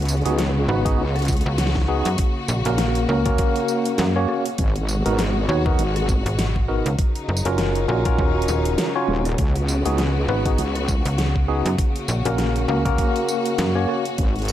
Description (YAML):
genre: glitch hop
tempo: 100 BPM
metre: 4/4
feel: swing 57% on 16ths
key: unclear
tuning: A4 = 441 Hz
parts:
  - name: clear studio string section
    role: sustained chords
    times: 0.0-14.5 s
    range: Cb3 to Gb4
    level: -28 LUFS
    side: left 2 dB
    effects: sidechain pumping
  - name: wobble bass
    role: bass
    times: 0.0-14.5 s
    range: Eb1 to Db2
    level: -22 LUFS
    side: equal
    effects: chorus
  - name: dubstep drum kit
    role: drums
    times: 0.0-14.5 s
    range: hi-hat, rim click, snare drum, tambourine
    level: -28 LUFS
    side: equal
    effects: overdrive
  - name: tine electric piano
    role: stabs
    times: 0.3-14.0 s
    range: Bb3 to Db5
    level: -24 LUFS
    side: equal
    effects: medium stereo tremolo, sidechain pumping, digital delay
  - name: slap-like FM bass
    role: bass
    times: 0.7-13.9 s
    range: Eb1 to Gb2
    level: -22 LUFS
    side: equal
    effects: none
  - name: electronic kick drum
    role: drums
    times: 0.9-14.3 s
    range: none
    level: -21 LUFS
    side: equal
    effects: overdrive
room: little or no reverb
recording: none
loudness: -18 LUFS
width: side -12 dB against mid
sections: 0.0-14.5 A section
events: none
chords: 0.0 Db7sus4; 2.2 Gb; 4.6 Abm7; 7.0 Ebm7; 9.4 Db7sus4; 11.8 Gb